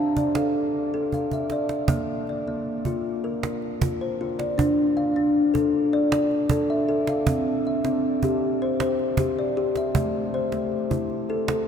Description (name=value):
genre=world meditative, meditative tuned percussion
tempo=156 BPM (eighths)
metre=7/8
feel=straight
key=D minor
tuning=A4 = 440 Hz
part: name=kalimba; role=arpeggios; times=0.0-11.7 s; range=D3 to A5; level=-22 LUFS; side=left 1 dB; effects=shimmer reverb
part: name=cajon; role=percussion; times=0.2-11.7 s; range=none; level=-29 LUFS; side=right 3 dB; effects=none
room=wet cathedral reverb, RT60 5.5 s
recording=in a vast, echoing space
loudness=-22 LUFS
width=side -7 dB against mid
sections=0.0-1.9 A section; 1.9-11.7 B section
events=drum fill 1.1-1.9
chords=0.0 Dm; 1.9 Bb; 4.6 Dm; 7.3 C; 10.0 Am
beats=0.35 0.74 1.12 1.51 | 1.89 2.27 2.66 3.04 3.43 3.81 4.19 | 4.58 4.96 5.35 5.73 6.11 6.50 6.88 | 7.27 7.65 8.04 8.42 8.80 9.19 9.57 | 9.96 10.34 10.73 11.11 11.50